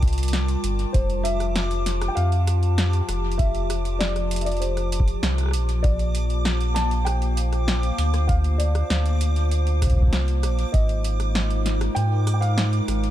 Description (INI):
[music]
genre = IDM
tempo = 98 BPM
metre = 4/4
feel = straight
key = F major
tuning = A4 = 444 Hz
[part]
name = felt-muted upright piano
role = melody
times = 0.0-13.1 s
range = Bb4 to A5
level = -31 LUFS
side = equal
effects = dub echo
[part]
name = warbly tape-like pad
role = sustained chords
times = 0.0-13.1 s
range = F3 to A5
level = -30 LUFS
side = left 2 dB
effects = chorus, built-in reverb
[part]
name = warm sub bass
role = bass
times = 0.0-13.1 s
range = F1 to Ab2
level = -22 LUFS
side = equal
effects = none
[part]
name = electro analog drum machine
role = drums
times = 0.0-13.1 s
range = hi-hat, rim click, snare drum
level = -29 LUFS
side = equal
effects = none
[part]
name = electronic kick drum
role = drums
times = 0.0-10.9 s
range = none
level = -21 LUFS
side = equal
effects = none
[part]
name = backwards swelling texture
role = texture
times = 0.0-13.1 s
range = D6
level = -36 LUFS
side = right 2 dB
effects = built-in reverb, sidechain pumping
[sound]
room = little or no reverb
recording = dark, warm production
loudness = -20 LUFS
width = side -13 dB against mid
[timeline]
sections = 0.0-13.1 A section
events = none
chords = 0.0 Gm7; 0.9 Fmaj7; 5.8 Bbmaj7; 10.7 Ab